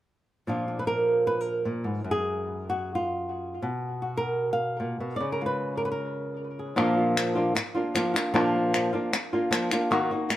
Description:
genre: flamenco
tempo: free time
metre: none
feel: none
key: Bb phrygian dominant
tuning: A4 = 441 Hz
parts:
  - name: flamenco guitar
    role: melody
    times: 0.5-10.3 s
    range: Gb2 to F5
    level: -26 LUFS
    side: equal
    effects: tape echo
  - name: flamenco guitar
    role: stabs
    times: 6.8-10.3 s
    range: Bb2 to Gb4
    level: -32 LUFS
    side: right 1 dB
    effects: none
  - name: palmas hand claps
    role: percussion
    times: 6.8-10.4 s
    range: none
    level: -29 LUFS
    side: left 2 dB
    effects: none
room: light reverb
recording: none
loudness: -25 LUFS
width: side -13 dB against mid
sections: 0.5-6.8 A section; 6.8-10.4 B section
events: none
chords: 0.5 Bb; 2.0 N.C.; 3.6 B5; 5.2 Db; 6.8 Bb

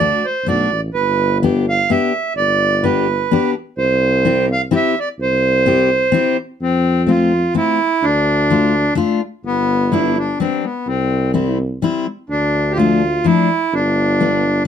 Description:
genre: alpine folk, alpine dance band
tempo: 127 BPM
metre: 3/4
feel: straight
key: C major, F major from 6.6 s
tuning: A4 = 437 Hz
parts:
  - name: accordion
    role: melody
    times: 0.0-14.6 s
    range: B3 to F5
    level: -16 LUFS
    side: right 2 dB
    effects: none
  - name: fingerpicked steel-string acoustic guitar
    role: accompaniment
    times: 0.0-14.4 s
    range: F3 to G4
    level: -17 LUFS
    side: left 6 dB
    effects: none
  - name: warm tuba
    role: bass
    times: 0.0-14.6 s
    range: G1 to F2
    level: -19 LUFS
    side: equal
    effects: none
room: light reverb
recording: close, detailed microphones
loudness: -14 LUFS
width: side -8 dB against mid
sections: 0.0-6.6 A section; 6.6-14.7 B section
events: none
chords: 0.0 D7; 0.9 G; 3.8 C; 6.6 F; 8.0 Dm; 9.5 G; 10.9 C; 12.3 Dm; 13.7 G

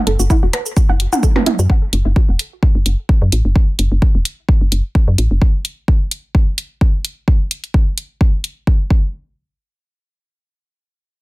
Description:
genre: minimal techno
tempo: 129 BPM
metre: 4/4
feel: swing 54% on 16ths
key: F# minor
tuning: A4 = 440 Hz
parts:
  - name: resonant blip pluck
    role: riff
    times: 0.1-1.6 s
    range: E4 to F#5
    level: -22 LUFS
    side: equal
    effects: chorus, sidechain pumping, ping-pong delay
  - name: woody FM bass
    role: bass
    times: 0.1-5.4 s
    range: E1 to F#2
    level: -14 LUFS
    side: equal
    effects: sidechain pumping
  - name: electronic hi-hat and shaker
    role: drums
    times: 0.1-8.5 s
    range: none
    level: -20 LUFS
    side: equal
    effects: small room ambience
  - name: electronic kick drum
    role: drums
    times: 0.3-9.0 s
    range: none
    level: -12 LUFS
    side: equal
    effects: small room ambience
  - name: electronic percussion blips and toms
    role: percussion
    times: 0.5-1.6 s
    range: none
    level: -19 LUFS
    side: right 3 dB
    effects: small room ambience
room: little or no reverb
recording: none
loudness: -13 LUFS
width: side -21 dB against mid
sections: 0.0-9.1 A section; 9.1-11.2 B section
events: none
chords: none

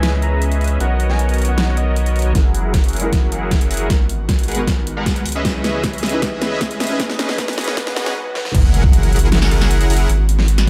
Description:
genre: future bass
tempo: 155 BPM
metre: 4/4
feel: half-time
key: unclear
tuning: A4 = 441 Hz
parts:
  - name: soft octave-layered synth lead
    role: melody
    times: 0.0-2.0 s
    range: D#5 to A#5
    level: -30 LUFS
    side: equal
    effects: chorus, sidechain pumping, tape echo
  - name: soft round pluck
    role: accompaniment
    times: 0.0-8.5 s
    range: G#3 to B4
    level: -31 LUFS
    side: equal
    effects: ensemble chorus, sidechain pumping, dub echo
  - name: airy breathy pad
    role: sustained chords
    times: 0.0-10.7 s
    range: C#3 to A#4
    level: -34 LUFS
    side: equal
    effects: none
  - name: supersaw chords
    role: riff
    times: 0.0-10.7 s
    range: F#3 to F#5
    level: -26 LUFS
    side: equal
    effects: sidechain pumping, low-pass filter
  - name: saturated sub bass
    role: bass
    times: 0.0-10.7 s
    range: F#1 to C#2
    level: -20 LUFS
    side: equal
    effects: sidechain pumping
  - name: dubstep drum kit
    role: drums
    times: 0.0-10.7 s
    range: crash cymbal, hi-hat, snare drum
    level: -25 LUFS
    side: equal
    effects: overdrive
  - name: electronic kick drum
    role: drums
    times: 2.4-10.7 s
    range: none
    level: -19 LUFS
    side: equal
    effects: overdrive
  - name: riser, swell and impact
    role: sound effects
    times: 4.2-10.1 s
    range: none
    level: -26 LUFS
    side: equal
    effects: none
room: light reverb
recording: high-pass filter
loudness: -17 LUFS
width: mono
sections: 0.0-2.4 A section; 2.4-8.5 B section; 8.5-10.7 C section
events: build-up 2.4-8.5; drum fill 2.4-8.2, 8.4; filter sweep on supersaw synth 2.4-8.5; filter sweep 2.4-8.5; swell 7.8-8.5; break 8.2-8.5; drop 8.5-10.7; impact 8.5-10.1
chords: 0.0 C#m7; 0.8 Bmaj7; 2.4 F#7; 3.9 G#m7; 5.3 C#m7; 7.0 B; 8.5 F#7; 10.1 G#m7

